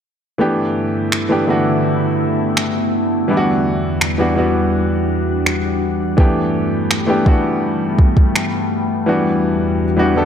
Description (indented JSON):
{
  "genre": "contemporary R&B",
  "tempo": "83 BPM",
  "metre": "4/4",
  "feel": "straight",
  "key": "G major",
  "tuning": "A4 = 440 Hz",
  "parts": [
    { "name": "clear grand piano", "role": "accompaniment", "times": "0.4-10.3 s", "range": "E3 to A4", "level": "-18 LUFS", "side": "equal", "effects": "none" },
    { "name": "glassy FM pad", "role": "sustained chords", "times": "0.6-10.3 s", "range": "E2 to F#4", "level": "-18 LUFS", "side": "left 1 dB", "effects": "ensemble chorus, built-in reverb" },
    { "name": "smooth R&B drum kit", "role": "drums", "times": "1.1-8.5 s", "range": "finger snaps, kick drum", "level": "-15 LUFS", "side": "equal", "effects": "overdrive" }
  ],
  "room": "light reverb, digital ambience",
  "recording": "dark, warm production",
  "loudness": "-14 LUFS",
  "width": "side -8 dB against mid",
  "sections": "0.4-10.3 A section",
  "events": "none",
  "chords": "0.4 G6; 3.3 Em7; 6.2 G6; 9.1 Em7"
}